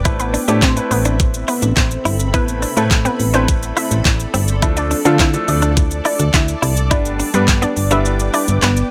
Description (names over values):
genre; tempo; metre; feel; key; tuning
dance-pop; 105 BPM; 4/4; straight; A minor; A4 = 440 Hz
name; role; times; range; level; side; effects
bright concert grand piano; accompaniment; 0.0-8.8 s; F3 to B4; -25 LUFS; equal; sidechain pumping
granular cloud pad; sustained chords; 0.0-8.9 s; C4 to D6; -29 LUFS; equal; built-in reverb, sidechain pumping
solid FM bass; bass; 0.0-8.8 s; G1 to D3; -20 LUFS; equal; sidechain pumping
direct-recorded clean electric guitar; riff; 0.1-8.4 s; B3 to E4; -25 LUFS; equal; analog chorus
pop drum kit; drums; 0.1-8.9 s; handclaps, hi-hat, kick drum, shaker, snare drum; -20 LUFS; equal; none
analog pluck; melody; 0.2-8.9 s; A3 to F5; -24 LUFS; equal; chorus, phaser, digital delay
room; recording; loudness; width
little or no reverb; none; -16 LUFS; mono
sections
0.0-8.9 A section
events
kick muted 8.1-8.9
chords
0.1 Amadd9; 4.6 Dm; 6.9 G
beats
| 0.05 0.62 1.20 1.77 | 2.34 2.91 3.48 4.05 | 4.62 5.20 5.77 6.34 | 6.91 7.48 8.05 8.62